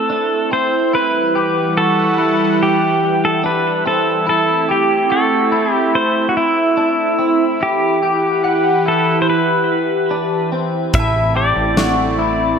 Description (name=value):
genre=dream pop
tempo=72 BPM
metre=4/4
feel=straight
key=A dorian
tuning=A4 = 440 Hz
part: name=pedal steel guitar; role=melody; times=0.0-12.6 s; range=E4 to E5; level=-17 LUFS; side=equal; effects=ping-pong delay
part: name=phased analog pad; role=sustained chords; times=0.0-12.6 s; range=E3 to F#5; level=-19 LUFS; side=right 2 dB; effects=phaser, chorus
part: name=clean electric guitar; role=arpeggios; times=0.1-12.6 s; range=C4 to F#5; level=-20 LUFS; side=left 3 dB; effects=analog chorus, ping-pong delay
part: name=plucky analog bass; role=bass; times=10.9-12.6 s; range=A1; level=-21 LUFS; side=equal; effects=none
part: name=huge arena drum kit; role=drums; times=10.9-12.0 s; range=hi-hat, kick drum, snare drum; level=-23 LUFS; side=equal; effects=gated reverb
part: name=synth chime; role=texture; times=11.0-12.6 s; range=A5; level=-31 LUFS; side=right 4 dB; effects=ensemble chorus, ping-pong delay
room=wet plate reverb, RT60 2.4 s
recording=bright 1980s-style digital production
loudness=-13 LUFS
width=side -6 dB against mid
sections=0.0-12.6 A section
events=none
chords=0.0 Am; 0.9 Emadd9; 4.3 Am; 7.6 Emadd9; 10.9 Am